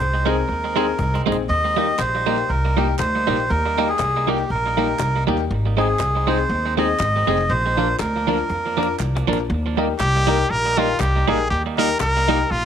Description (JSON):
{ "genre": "ska", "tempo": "120 BPM", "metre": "4/4", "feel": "swing 56% on 8ths", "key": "Eb major", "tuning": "A4 = 439 Hz", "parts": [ { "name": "melodica", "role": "melody", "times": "0.0-9.0 s", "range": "G4 to Eb5", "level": "-22 LUFS", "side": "right 1 dB", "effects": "none" }, { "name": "upright bass", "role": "bass", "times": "0.0-12.7 s", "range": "F1 to F2", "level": "-23 LUFS", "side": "equal", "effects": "none" }, { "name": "clean electric guitar", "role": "accompaniment", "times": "0.3-12.4 s", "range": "F3 to Eb4", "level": "-25 LUFS", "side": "right 12 dB", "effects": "tape echo" }, { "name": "warm upright piano", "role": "stabs", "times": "0.3-12.4 s", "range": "Bb3 to Bb4", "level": "-25 LUFS", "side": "left 11 dB", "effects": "none" }, { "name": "cajon", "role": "drums", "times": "0.3-12.3 s", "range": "none", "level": "-29 LUFS", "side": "left 6 dB", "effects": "none" }, { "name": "group handclap", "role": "percussion", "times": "2.0-12.1 s", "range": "none", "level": "-38 LUFS", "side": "right 11 dB", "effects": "none" }, { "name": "brilliant trumpet", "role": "melody", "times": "10.0-12.7 s", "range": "F4 to Bb4", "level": "-20 LUFS", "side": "equal", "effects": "none" } ], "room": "light reverb, small room ambience", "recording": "1960s-style stereo with parts hard left and right", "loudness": "-17 LUFS", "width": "side -8 dB against mid", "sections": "0.0-9.5 A section; 9.5-12.7 B section", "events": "drum fill 1.0-1.5, 8.5-9.5; trumpet solo 9.5-12.7", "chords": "0.0 Ab; 1.5 Eb; 5.5 Ab; 7.5 Bb; 9.5 Eb", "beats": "0.48 0.99 | 1.49 1.99 2.49 2.99 | 3.49 3.99 4.49 4.99 | 5.49 5.99 6.50 7.00 | 7.50 8.00 8.50 9.00 | 9.50 10.00 10.50 11.00 | 11.51 12.01 12.51" }